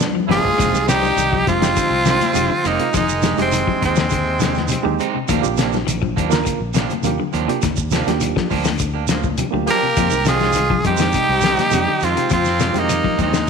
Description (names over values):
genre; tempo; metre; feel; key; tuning
afrobeat; 102 BPM; 4/4; straight; unclear; A4 = 440 Hz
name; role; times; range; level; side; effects
bright reed electric piano; accompaniment; 0.0-13.2 s; F3 to Bb4; -25 LUFS; right 14 dB; overdrive
clean electric guitar; arpeggios; 0.0-13.4 s; C3 to F3; -27 LUFS; left 11 dB; warbly pitch drift
electric guitar at the edge of break-up; stabs; 0.0-13.4 s; Eb3 to Ab4; -26 LUFS; right 12 dB; none
cloth-damped thuddy drum kit; drums; 0.0-13.5 s; hi-hat, kick drum, snare drum, toms; -23 LUFS; left 4 dB; none
congas; percussion; 0.0-13.5 s; none; -27 LUFS; left 12 dB; none
shekere; percussion; 0.0-13.5 s; none; -28 LUFS; right 10 dB; none
raspy tenor saxophone; melody; 0.3-5.0, 9.7-13.5 s; C4 to Bb4; -19 LUFS; equal; none
brilliant trumpet; second line; 0.3-5.0, 9.7-13.5 s; Ab3 to G4; -24 LUFS; right 11 dB; none
mellow trombone section; second line; 0.3-5.0, 9.7-13.5 s; C3 to Bb3; -29 LUFS; left 12 dB; none
fingered electric bass; bass; 0.3-13.5 s; F1 to F2; -24 LUFS; equal; none
room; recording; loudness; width
light reverb; 1960s-style stereo with parts hard left and right; -15 LUFS; side -6 dB against mid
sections
0.6-13.5 A section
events
drum fill 0.0-0.6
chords
0.0 G7b9; 0.6 Fm9; 5.3 Ebmaj9; 10.0 Fm9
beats
0.01 | 0.59 1.18 1.77 2.35 | 2.94 3.53 4.11 4.70 | 5.29 5.87 6.46 7.04 | 7.63 8.21 8.80 9.38 | 9.97 10.55 11.14 11.72 | 12.31 12.89 13.47